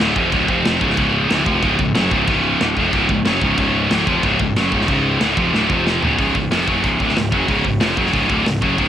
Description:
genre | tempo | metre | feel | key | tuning
heavy metal | 184 BPM | 4/4 | straight | unclear | A4 = 436 Hz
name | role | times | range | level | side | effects
scooped high-gain guitar | riff | 0.0-8.9 s | C#2 to F#3 | -16 LUFS | equal | distortion, cassette tape
fuzz picked electric bass | bass | 0.0-8.9 s | C#1 to F#1 | -23 LUFS | equal | overdrive
tight metal drum kit | drums | 0.0-8.9 s | crash cymbal, hi-hat, kick drum, snare drum, toms | -22 LUFS | equal | cassette tape
room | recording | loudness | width
little or no reverb | home recording on cassette | -14 LUFS | side -10 dB against mid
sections
0.0-6.2 A section; 6.2-8.9 B section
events
drum fill 5.5-6.2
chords
0.5 F5; 0.8 C#; 5.7 F5; 6.0 C#5; 6.2 C#

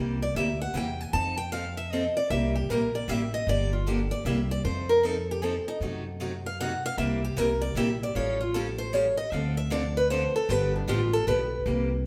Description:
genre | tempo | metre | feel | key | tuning
acoustic string swing (jazz manouche) | 154 BPM | 3/4 | swing 63% on 8ths | C mixolydian | A4 = 440 Hz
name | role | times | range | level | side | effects
picked steel-string acoustic guitar | accompaniment | 0.0-11.9 s | C3 to A4 | -34 LUFS | equal | none
upright bass | bass | 0.0-12.1 s | G1 to F#2 | -33 LUFS | equal | none
picked steel-string acoustic guitar | melody | 0.2-11.6 s | D4 to A5 | -30 LUFS | equal | none
room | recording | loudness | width
wet stone room reverb, RT60 1.2 s | band playing live in one room | -28 LUFS | mono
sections
0.0-12.1 A section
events
steel-string acoustic guitar solo 0.0-12.1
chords
0.0 C7; 1.1 F7; 2.3 C7; 3.5 Gm7; 4.2 C7; 4.6 F7; 5.8 F#dim7; 7.0 C7; 8.2 Aaug7; 9.3 Dm7; 10.5 G7

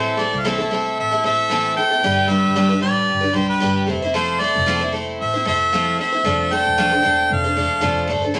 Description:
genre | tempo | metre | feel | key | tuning
acoustic pop | 114 BPM | 4/4 | swing 55% on 16ths | unclear | A4 = 435 Hz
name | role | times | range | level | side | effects
clear harmonica | melody | 0.0-8.1 s | B4 to G5 | -21 LUFS | equal | none
picked twelve-string acoustic guitar | accompaniment | 0.0-8.4 s | A2 to C5 | -22 LUFS | equal | none
warm double bass | bass | 0.0-8.4 s | E1 to C2 | -31 LUFS | equal | none
room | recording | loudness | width
wet studio reverb, RT60 0.6 s | none | -19 LUFS | mono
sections
0.0-8.4 A section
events
none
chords
0.0 Am; 2.0 G; 3.9 Fmaj7; 6.2 Dm7

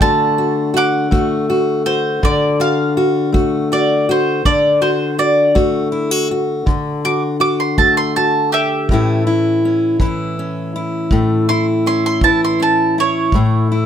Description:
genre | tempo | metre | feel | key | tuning
acoustic country blues, solo or duo | 54 BPM (dotted quarters) | 12/8 | straight | D major | A4 = 440 Hz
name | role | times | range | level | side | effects
mandolin | melody | 0.0-13.7 s | G4 to D6 | -16 LUFS | right 2 dB | none
fingerpicked steel-string acoustic guitar | accompaniment | 0.0-13.9 s | A2 to F#4 | -16 LUFS | left 1 dB | none
kick drum | drums | 0.0-13.5 s | none | -18 LUFS | equal | none
room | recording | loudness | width
moderate small room reverb, RT60 0.5 s | none | -13 LUFS | side -9 dB against mid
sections
0.0-13.9 A section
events
none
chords
0.0 D; 8.9 A

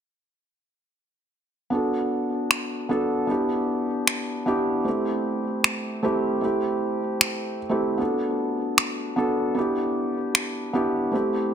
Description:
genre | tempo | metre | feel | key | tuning
future bass | 153 BPM | 4/4 | half-time | G major | A4 = 436 Hz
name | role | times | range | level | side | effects
felt-muted upright piano | accompaniment | 1.7-11.5 s | A3 to A4 | -23 LUFS | equal | ping-pong delay
electronic finger snaps | drums | 2.5-10.4 s | none | -21 LUFS | equal | overdrive, soft clipping on snare
room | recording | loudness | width
light reverb, small room ambience | dense, heavily limited modern master | -22 LUFS | side -8 dB against mid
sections
1.7-11.5 A section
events
none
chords
1.7 Bm7; 3.3 G6/B; 4.9 Am7; 8.0 Bm7; 9.6 G6/B

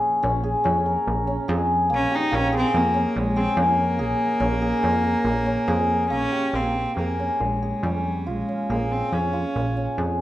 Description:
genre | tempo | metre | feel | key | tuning
contemporary instrumental, chamber music in an uneven meter | 142 BPM | 5/4 | straight | Bb dorian | A4 = 440 Hz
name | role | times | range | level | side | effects
hammered dulcimer | arpeggios | 0.0-10.2 s | Bb3 to Bb4 | -23 LUFS | equal | none
plucky analog bass | bass | 0.2-10.2 s | Bb1 to F2 | -26 LUFS | equal | none
rich cello | melody | 1.9-10.0 s | G3 to Eb4 | -25 LUFS | equal | none
room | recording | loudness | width
wet recital hall reverb, RT60 1.4 s | none | -20 LUFS | side -14 dB against mid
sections
0.0-6.5 A section; 6.5-10.2 B section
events
none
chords
0.0 Bbm7

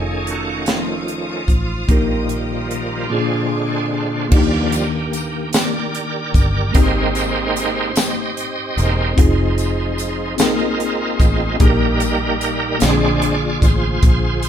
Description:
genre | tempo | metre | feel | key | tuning
slow gospel | 49 BPM (dotted quarters) | 6/8 | straight | Eb major | A4 = 440 Hz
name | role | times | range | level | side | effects
mellow tine electric piano | accompaniment | 0.0-14.5 s | Ab2 to Bb4 | -22 LUFS | left 2 dB | medium stereo tremolo
bright tonewheel organ | sustained chords | 0.0-14.5 s | D3 to Eb5 | -21 LUFS | right 2 dB | slow rotary speaker, chorus vibrato
rich studio string section | sustained chords | 0.0-4.3 s | Eb5 to Eb6 | -32 LUFS | left 2 dB | none
fingered electric bass | bass | 0.0-14.5 s | Fb1 to Eb2 | -21 LUFS | equal | none
crisp fusion drum kit | drums | 0.3-14.5 s | crash cymbal, hi-hat, kick drum, snare drum | -17 LUFS | equal | none
tambourine | percussion | 4.7-14.5 s | none | -30 LUFS | left 6 dB | none
room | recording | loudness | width
light reverb | band playing live in one room | -15 LUFS | side -9 dB against mid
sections
0.0-4.3 A section; 4.3-14.5 B section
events
tonewheel organ solo 0.0-4.3, 4.3-14.5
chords
0.0 Faug7; 1.9 Eb/Bb; 3.1 Bb7; 4.3 Ebmaj7; 6.7 Abmaj7; 9.2 Fm7; 10.4 Bb9sus4; 11.6 Eb/Bb; 12.8 Bb7

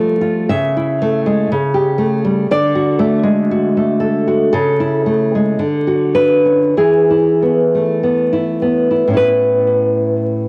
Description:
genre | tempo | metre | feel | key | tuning
romantic piece for solo classical guitar | 46-63 BPM | 2/4 | rubato | A major | A4 = 440 Hz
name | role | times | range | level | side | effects
nylon-string guitar | solo | 0.0-10.5 s | A2 to E5 | -15 LUFS | equal | cassette tape
room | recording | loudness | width
light reverb, studio ambience | home recording on cassette, vinyl crackle | -15 LUFS | mono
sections
0.0-9.2 A section; 9.2-10.5 B section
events
none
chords
0.0 F; 0.5 A/C#; 1.5 A7/C#; 2.5 D; 4.5 A/C#; 5.6 Bm/D; 6.8 E; 9.2 A

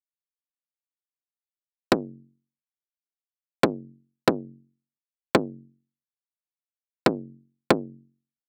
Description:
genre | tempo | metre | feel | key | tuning
dubstep | 140 BPM | 4/4 | swing 59% on 16ths, half-time | none | none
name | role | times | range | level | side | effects
electronic kick drum | drums | 1.9-7.8 s | none | -23 LUFS | equal | overdrive, high-pass filter on kick
room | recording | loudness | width
little or no reverb | none | -26 LUFS | mono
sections
1.9-8.5 A section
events
none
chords
none

